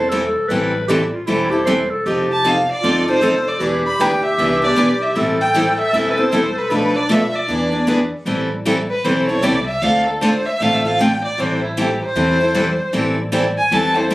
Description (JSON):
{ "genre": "acoustic string swing (jazz manouche)", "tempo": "154 BPM", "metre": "4/4", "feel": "swing 62% on 8ths", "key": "A minor", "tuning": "A4 = 440 Hz", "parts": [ { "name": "growling clarinet", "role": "second line", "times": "0.0-8.1 s", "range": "D4 to C5", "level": "-20 LUFS", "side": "equal", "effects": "none" }, { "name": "picked steel-string acoustic guitar", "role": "accompaniment", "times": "0.0-14.1 s", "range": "B2 to A4", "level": "-19 LUFS", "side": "left 1 dB", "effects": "none" }, { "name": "upright bass", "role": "bass", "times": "0.0-14.1 s", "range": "E1 to E2", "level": "-28 LUFS", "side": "equal", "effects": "none" }, { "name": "picked steel-string acoustic guitar", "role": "accompaniment", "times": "0.1-14.1 s", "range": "B2 to B4", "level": "-24 LUFS", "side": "right 2 dB", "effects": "none" }, { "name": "rich violin", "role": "melody", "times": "2.3-14.1 s", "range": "E4 to B5", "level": "-18 LUFS", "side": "equal", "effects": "plate reverb" } ], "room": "moderate studio reverb, RT60 0.5 s", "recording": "recorded on a phone in the room, club reverb, compression", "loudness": "-15 LUFS", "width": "side -18 dB against mid", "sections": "0.0-8.3 A section; 8.3-14.1 B section", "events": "violin solo 8.3-14.1", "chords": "0.0 Am7; 2.0 F7; 3.6 E7#9; 5.2 Am7; 6.7 Bm7b5; 7.5 E7; 8.3 Am9; 9.8 Dm7; 11.4 Am7" }